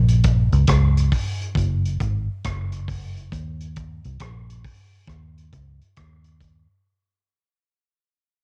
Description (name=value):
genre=roots reggae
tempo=68 BPM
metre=4/4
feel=swing 64% on 16ths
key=unclear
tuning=A4 = 440 Hz
part: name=vintage muted fingered electric bass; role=bass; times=0.0-6.7 s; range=Gb1 to Eb2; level=-22 LUFS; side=equal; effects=none
part: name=vintage drum kit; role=drums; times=0.1-6.7 s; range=hi-hat, kick drum, rim click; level=-27 LUFS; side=equal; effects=none
room=little or no reverb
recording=home recording on cassette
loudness=-21 LUFS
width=mono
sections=0.0-6.8 A section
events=fade-out 0.0-6.8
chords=none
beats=0.68 1.56 2.44 | 3.32 4.20 5.08 5.97